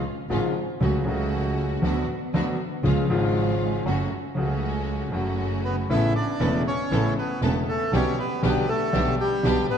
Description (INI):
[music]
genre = tango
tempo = 118 BPM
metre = 4/4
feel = rubato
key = F# minor, A major from 5.9 s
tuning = A4 = 445 Hz
[part]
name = warm concert grand piano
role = accompaniment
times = 0.3-9.7 s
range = E1 to G4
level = -25 LUFS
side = left 2 dB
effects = none
[part]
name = rich studio string section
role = stabs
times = 0.3-9.7 s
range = G#3 to A4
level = -31 LUFS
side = right 3 dB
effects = none
[part]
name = clear double bass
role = bass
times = 0.3-9.8 s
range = E1 to D2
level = -28 LUFS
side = right 2 dB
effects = none
[part]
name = bandoneon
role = melody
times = 5.6-9.8 s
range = G3 to E5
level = -26 LUFS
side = equal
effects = none
[sound]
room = wet concert hall reverb, RT60 2.1 s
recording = dark, warm production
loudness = -22 LUFS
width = side -8 dB against mid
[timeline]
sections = 0.0-5.9 A section; 5.9-9.8 B section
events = none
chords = 0.0 C#; 0.8 F#m/C#; 1.8 Bm/D; 2.8 C#; 3.9 F#m; 5.9 Aadd9; 7.9 G/B